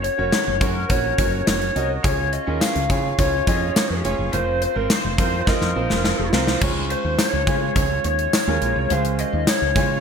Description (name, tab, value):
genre	1980s-style pop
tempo	105 BPM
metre	4/4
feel	straight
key	unclear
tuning	A4 = 436 Hz
part	lead guitar through a small cranked amp	melody	0.0-10.0 s	Bb4 to F5	-24 LUFS	left 1 dB	overdrive, analog chorus
part	clear concert grand piano	accompaniment	0.0-10.0 s	Ab3 to Eb5	-25 LUFS	right 3 dB	wide subtle chorus
part	woody fretless electric bass	bass	0.0-10.0 s	F1 to Db3	-25 LUFS	equal	lush chorus
part	gated 80s drum kit	drums	0.0-9.9 s	crash cymbal, hi-hat, kick drum, snare drum, tambourine	-22 LUFS	left 1 dB	gated reverb
room	moderate plate reverb, RT60 2.9 s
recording	bright 1980s-style digital production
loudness	-18 LUFS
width	side -6 dB against mid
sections	0.0-6.6 A section; 6.6-10.0 B section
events	drum fill 5.5-6.6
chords	0.0 Gb; 2.0 Db; 4.3 Fsus4; 6.6 Db